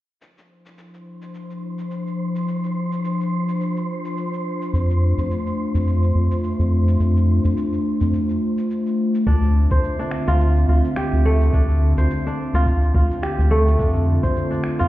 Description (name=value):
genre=organic downtempo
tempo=106 BPM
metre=4/4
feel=swing 56% on 16ths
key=D minor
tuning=A4 = 440 Hz
part: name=warbly tape-like pad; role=sustained chords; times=0.2-14.9 s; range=D3 to E5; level=-24 LUFS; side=left 1 dB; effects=chorus, built-in reverb, sidechain pumping
part: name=electronic shaker and finger snaps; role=drums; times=0.2-14.9 s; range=none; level=-39 LUFS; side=equal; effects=none
part: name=wind-like tuned noise texture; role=texture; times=1.3-9.3 s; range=C5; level=-35 LUFS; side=right 4 dB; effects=built-in reverb
part: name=round analog bass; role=bass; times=4.7-14.9 s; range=D2 to F2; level=-17 LUFS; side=equal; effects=none
part: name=kora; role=arpeggios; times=9.3-14.9 s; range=A3 to C5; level=-24 LUFS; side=equal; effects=tape echo
part: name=electronic kick drum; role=drums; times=9.3-14.3 s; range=none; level=-22 LUFS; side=equal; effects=none
room=little or no reverb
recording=heard muffled through a wall, stone room reverb, EQ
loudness=-18 LUFS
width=side -15 dB against mid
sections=0.2-9.3 A section; 9.3-14.9 B section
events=filter sweep on ambient pad 0.2-9.3; break 8.1-9.3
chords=0.2 Dm9; 4.7 F6; 9.3 Dm9